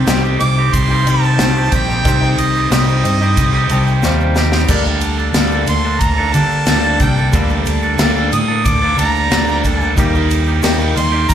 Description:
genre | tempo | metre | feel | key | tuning
folk rock and heartland rock | 91 BPM | 4/4 | straight | G minor | A4 = 440 Hz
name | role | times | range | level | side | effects
bright upright piano | accompaniment | 0.0-11.3 s | G3 to A5 | -31 LUFS | right 2 dB | none
picked swing-style acoustic guitar | accompaniment | 0.0-11.3 s | C3 to A4 | -22 LUFS | left 8 dB | slapback echo
twangy electric guitar | riff | 0.0-11.3 s | C3 to A4 | -21 LUFS | right 5 dB | slapback echo
fingered electric bass | bass | 0.0-11.3 s | Bb1 to D3 | -16 LUFS | equal | none
natural country drum kit | drums | 0.1-11.3 s | crash cymbal, kick drum, ride cymbal, snare drum, splash cymbal | -18 LUFS | equal | none
egg shaker | percussion | 0.1-11.3 s | none | -32 LUFS | left 5 dB | none
clear harmonica | melody | 0.4-11.3 s | Eb5 to Eb6 | -18 LUFS | right 2 dB | slapback echo
room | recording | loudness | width
light reverb | live gig heard through the venue's PA, club reverb | -12 LUFS | side -9 dB against mid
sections
0.0-11.3 A section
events
upright piano fill 3.4-4.7; drum fill 4.0-4.7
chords
0.0 Cm; 4.7 Gmadd9; 10.0 Eb

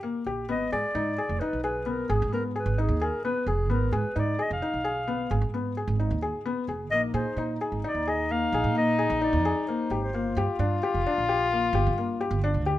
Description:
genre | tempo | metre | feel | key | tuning
contemporary instrumental, chamber music in an uneven meter | 131 BPM | 7/4 | straight | unclear | A4 = 442 Hz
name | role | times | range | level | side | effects
felt-muted upright piano | arpeggios | 0.0-12.8 s | Bb3 to Ab4 | -30 LUFS | left 3 dB | none
upright bass | bass | 0.3-12.7 s | F1 to Bb2 | -29 LUFS | right 2 dB | none
breathy clarinet | melody | 0.5-10.5 s | Ab4 to F5 | -30 LUFS | left 1 dB | none
warm French horn | second line | 6.9-12.8 s | Eb4 to F4 | -29 LUFS | left 4 dB | none
room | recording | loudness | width
light reverb | close, detailed microphones | -24 LUFS | side -14 dB against mid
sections
0.0-12.8 A section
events
none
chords
0.5 Abm; 6.9 Bb7sus4; 10.1 Gm7

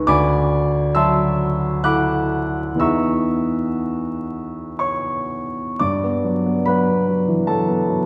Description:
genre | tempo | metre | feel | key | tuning
classical, impressionist solo piano | 57-74 BPM | 3/4 | rubato | E lydian | A4 = 437 Hz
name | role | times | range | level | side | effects
warm concert grand piano | solo | 0.0-8.1 s | D2 to F#6 | -20 LUFS | equal | none
room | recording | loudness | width
wet concert hall reverb, RT60 1.8 s | heard from further back in the room, vinyl crackle | -20 LUFS | mono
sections
0.0-5.8 A section; 5.8-8.1 B section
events
none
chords
0.1 D9; 2.8 Emaj7; 5.8 Gmaj9

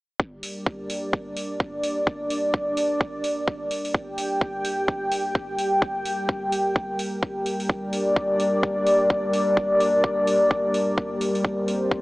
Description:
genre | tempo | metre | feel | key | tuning
bass house | 128 BPM | 4/4 | swing 59% on 16ths | G minor | A4 = 441 Hz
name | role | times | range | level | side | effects
dark analog pad | sustained chords | 0.2-12.0 s | G3 to G5 | -22 LUFS | equal | chorus, sidechain pumping
electronic kick drum | drums | 0.2-12.0 s | none | -24 LUFS | equal | none
electronic hi-hat | drums | 0.4-11.8 s | none | -35 LUFS | right 1 dB | none
room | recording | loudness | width
wet huge ambient reverb, RT60 7.9 s | dreamy mix soaked in reverb, AM radio sound | -22 LUFS | side -21 dB against mid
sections
0.2-12.0 A section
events
none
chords
0.2 Gm

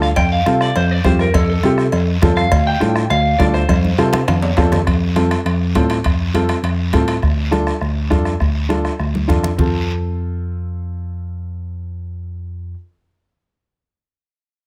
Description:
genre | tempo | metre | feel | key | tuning
latin, cumbia | 204 BPM | 4/4 | straight | F major | A4 = 440 Hz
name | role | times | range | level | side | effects
clean electric guitar | melody | 0.0-4.5 s | A4 to G5 | -22 LUFS | equal | spring reverb
clear upright piano | accompaniment | 0.0-12.8 s | C4 to A4 | -22 LUFS | equal | none
bright tine electric piano | bass | 0.0-12.7 s | D2 to C3 | -21 LUFS | equal | none
bombo | percussion | 0.0-9.7 s | none | -22 LUFS | equal | none
guiro | percussion | 0.0-9.7 s | none | -35 LUFS | equal | none
congas | percussion | 0.2-9.7 s | none | -26 LUFS | equal | none
cowbell and timbales | percussion | 0.2-7.2 s | none | -29 LUFS | equal | none
room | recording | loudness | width
little or no reverb | close, detailed microphones | -17 LUFS | mono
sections
0.0-4.9 A section; 4.9-9.6 B section; 9.6-12.0 C section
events
drum fill 3.7-4.9, 9.1-9.6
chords
0.2 F; 2.5 Dm; 3.7 F; 7.2 Dm; 9.6 F

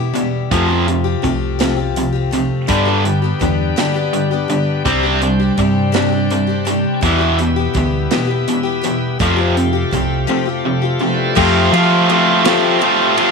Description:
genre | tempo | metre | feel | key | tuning
folk rock and heartland rock | 55 BPM (dotted quarters) | 6/8 | straight | unclear | A4 = 440 Hz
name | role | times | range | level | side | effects
picked steel-string acoustic guitar | accompaniment | 0.0-13.3 s | G2 to G4 | -20 LUFS | left 14 dB | none
overdriven electric guitar | riff | 0.0-13.3 s | E2 to F4 | -16 LUFS | right 2 dB | none
natural country drum kit | drums | 0.2-13.3 s | crash cymbal, hi-hat, kick drum, ride cymbal, snare drum | -23 LUFS | right 5 dB | none
hollow-body short-scale fingered electric bass | bass | 0.5-13.0 s | C2 to F3 | -19 LUFS | right 1 dB | none
bright tonewheel organ | sustained chords | 2.7-13.3 s | A3 to E5 | -24 LUFS | right 1 dB | slow rotary speaker, overdrive
room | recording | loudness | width
light reverb, studio reverb | 1960s-style stereo | -13 LUFS | side -4 dB against mid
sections
0.0-11.4 A section; 11.4-13.3 B section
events
none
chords
0.0 Em; 0.5 Fadd9; 2.7 G; 4.9 Csus2; 7.0 Em; 9.2 Fadd9

